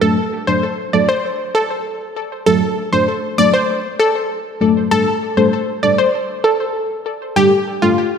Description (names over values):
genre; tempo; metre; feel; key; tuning
dancehall; 98 BPM; 4/4; straight; unclear; A4 = 440 Hz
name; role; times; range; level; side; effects
analog pluck; melody; 0.0-7.9 s; F4 to D5; -16 LUFS; left 1 dB; chorus, ping-pong delay
deep mellow chord stab; accompaniment; 0.0-8.0 s; F#3 to A4; -17 LUFS; equal; chorus, phaser
room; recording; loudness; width
wet lush hall reverb, RT60 2.0 s, digital ambience; dreamy mix soaked in reverb; -14 LUFS; side -7 dB against mid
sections
0.0-8.2 A section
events
none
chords
0.0 D; 4.9 Gsus2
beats
| 0.02 0.63 1.24 1.85 | 2.46 3.08 3.69 4.30 | 4.91 5.53 6.14 6.75 | 7.36